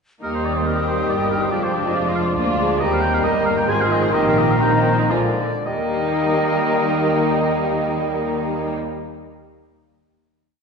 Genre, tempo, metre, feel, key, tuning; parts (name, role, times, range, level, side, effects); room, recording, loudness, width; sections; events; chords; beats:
quick classical-period movement for symphony orchestra; 107-143 BPM; 3/4; rubato; Eb major; A4 = 440 Hz
muted studio violin section; melody; 0.2-8.7 s; Eb4 to Bb4; -26 LUFS; left 2 dB
mellow hollow concert flute; second line; 0.2-8.7 s; G5 to Eb6; -27 LUFS; left 2 dB
muted studio violin section; second line; 0.2-8.7 s; Bb3 to Eb4; -30 LUFS; left 1 dB
warm clarinet; second line; 0.2-8.7 s; G4 to Bb4; -29 LUFS; left 2 dB
warm oboe; second line; 0.2-8.7 s; Bb4 to Ab5; -26 LUFS; right 1 dB
muted studio viola section; accompaniment; 0.2-8.7 s; D3 to Bb3; -27 LUFS; right 1 dB
warm bassoon; accompaniment; 0.2-8.7 s; Eb3 to F3; -26 LUFS; right 3 dB
mellow French horn section; sustained chords; 0.2-8.7 s; G3 to G4; -27 LUFS; left 4 dB
muted studio cello section; bass; 0.2-8.7 s; D2 to Eb3; -28 LUFS; right 1 dB
muted studio double bass section; bass; 0.2-8.7 s; F1 to Eb2; -28 LUFS; right 1 dB
wet scoring stage reverb, RT60 1.7 s; heard from further back in the room, nothing above 10.5 kHz; -17 LUFS; side -5 dB against mid
0.2-5.7 theme; 5.7-8.9 final chord
slowing down 2.2-5.7
0.2 Eb; 1.5 Ddim/F; 2.8 Eb; 3.7 Ab; 4.1 Eb/Bb; 5.1 Bb7; 5.7 Eb
| 0.23 0.67 1.10 | 1.52 1.94 2.37 | 2.80 3.23 3.68 | 4.14 4.61 5.11 | 5.66 6.20 6.74 | 7.26 7.80 8.34